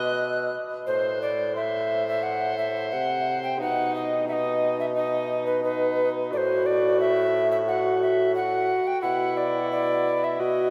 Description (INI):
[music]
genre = classical, renaissance-style consort dance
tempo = 88 BPM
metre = 4/4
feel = straight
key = unclear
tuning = A4 = 441 Hz
[part]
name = alto recorder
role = melody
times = 0.0-10.7 s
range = B4 to F#6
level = -27 LUFS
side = equal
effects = none
[part]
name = warm viola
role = second line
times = 0.0-10.7 s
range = D#4 to D#5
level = -30 LUFS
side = equal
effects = none
[part]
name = warm bassoon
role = bass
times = 0.0-10.7 s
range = A2 to C3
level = -32 LUFS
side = equal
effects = none
[sound]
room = wet cathedral reverb, RT60 5.7 s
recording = none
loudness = -25 LUFS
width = mono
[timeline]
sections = 0.9-10.7 A section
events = none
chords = 0.0 B5; 0.9 Am; 3.6 B; 6.3 A5; 9.0 Bsus4